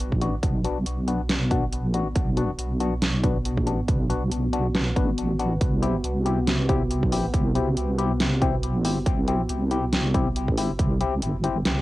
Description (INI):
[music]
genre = deep dubstep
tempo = 139 BPM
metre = 4/4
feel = swing 57% on 16ths, half-time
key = B phrygian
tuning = A4 = 441 Hz
[part]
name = dark analog pad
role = sustained chords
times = 0.0-11.8 s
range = B3 to F#4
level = -32 LUFS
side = equal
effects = chorus, phaser
[part]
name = deep soft wobble bass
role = bass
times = 0.0-11.8 s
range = G1 to C2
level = -25 LUFS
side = right 1 dB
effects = chorus
[part]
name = dubstep drum kit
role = drums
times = 0.0-11.8 s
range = hi-hat, snare drum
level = -27 LUFS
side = right 1 dB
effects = overdrive, cassette tape
[part]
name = electronic kick drum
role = drums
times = 0.1-10.9 s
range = none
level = -26 LUFS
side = right 1 dB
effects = overdrive, cassette tape
[part]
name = percussive organ stab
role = stabs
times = 0.2-11.6 s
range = B3 to G4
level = -29 LUFS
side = left 5 dB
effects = chorus, cassette tape, dub echo
[sound]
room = light reverb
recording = home recording on cassette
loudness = -21 LUFS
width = side -17 dB against mid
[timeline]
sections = 0.0-11.8 A section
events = none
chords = 0.0 Bm; 5.6 C